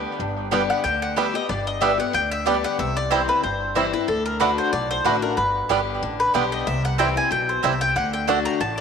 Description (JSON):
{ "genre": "bluegrass", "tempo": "186 BPM", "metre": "4/4", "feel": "swing 54% on 8ths", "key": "G major", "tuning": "A4 = 440 Hz", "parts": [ { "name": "mandolin", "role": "melody", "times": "0.0-8.8 s", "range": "A4 to Bb5", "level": "-23 LUFS", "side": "left 2 dB", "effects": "none" }, { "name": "picked steel-string acoustic guitar", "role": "accompaniment", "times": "0.0-8.8 s", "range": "G2 to G4", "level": "-26 LUFS", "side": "left 10 dB", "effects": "none" }, { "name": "upright bass", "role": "bass", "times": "0.0-8.8 s", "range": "G1 to D2", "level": "-30 LUFS", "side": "right 1 dB", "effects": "none" }, { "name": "bluegrass banjo", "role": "melody", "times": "0.5-8.4 s", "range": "G3 to E4", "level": "-30 LUFS", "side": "right 5 dB", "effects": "none" }, { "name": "mandolin", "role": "stabs", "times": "0.5-8.4 s", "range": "A3 to G5", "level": "-26 LUFS", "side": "right 10 dB", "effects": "tape echo" } ], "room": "wet plate reverb, RT60 2.8 s", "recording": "1960s-style stereo with parts hard left and right", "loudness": "-19 LUFS", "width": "side -6 dB against mid", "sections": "0.2-8.8 A section", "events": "none", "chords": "0.2 G; 2.8 C; 4.1 D; 5.4 G; 6.7 C; 8.0 D" }